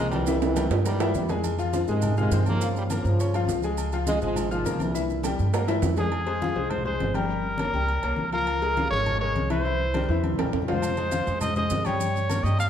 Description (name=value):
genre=latin, salsa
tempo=204 BPM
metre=4/4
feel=straight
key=F minor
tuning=A4 = 440 Hz
part: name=clear trombone section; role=melody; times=0.0-5.3 s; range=G2 to Bb3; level=-29 LUFS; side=equal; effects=none
part: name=bright concert grand piano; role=accompaniment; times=0.0-12.7 s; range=E3 to F6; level=-30 LUFS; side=left 5 dB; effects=none
part: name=upright bass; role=bass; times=0.0-12.7 s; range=G1 to Ab2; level=-28 LUFS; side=right 1 dB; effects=none
part: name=agogo bells and timbales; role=percussion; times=0.1-12.7 s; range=none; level=-33 LUFS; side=right 6 dB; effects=none
part: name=congas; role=percussion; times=0.1-12.7 s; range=none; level=-31 LUFS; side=left 2 dB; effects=none
part: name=maracas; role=percussion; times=0.1-6.1, 10.8-12.7 s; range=none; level=-41 LUFS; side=right 9 dB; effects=none
part: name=clear trumpet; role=melody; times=6.0-12.7 s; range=Ab4 to F5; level=-27 LUFS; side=equal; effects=none
room=moderate recital hall reverb, RT60 1.3 s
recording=dark, warm production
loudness=-23 LUFS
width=side -9 dB against mid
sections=0.0-6.1 A section; 6.1-12.7 B section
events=drum fill 0.3-1.4, 5.2-6.1, 9.9-10.8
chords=0.3 C7; 1.4 Fm7; 2.6 Gm7b5; 3.8 Db6; 4.9 C7; 6.1 Fm; 7.3 Gm7b5; 8.5 Db6; 9.6 C7; 10.8 Fm7; 12.0 Gdim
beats=| 0.26 0.56 0.85 1.14 | 1.44 1.73 2.02 2.31 | 2.61 2.90 3.19 3.48 | 3.78 4.07 4.36 4.65 | 4.95 5.24 5.53 5.83 | 6.12 6.41 6.71 7.00 | 7.29 7.59 7.88 8.18 | 8.47 8.77 9.06 9.35 | 9.65 9.94 10.24 10.53 | 10.83 11.12 11.42 11.71 | 12.01 12.30 12.60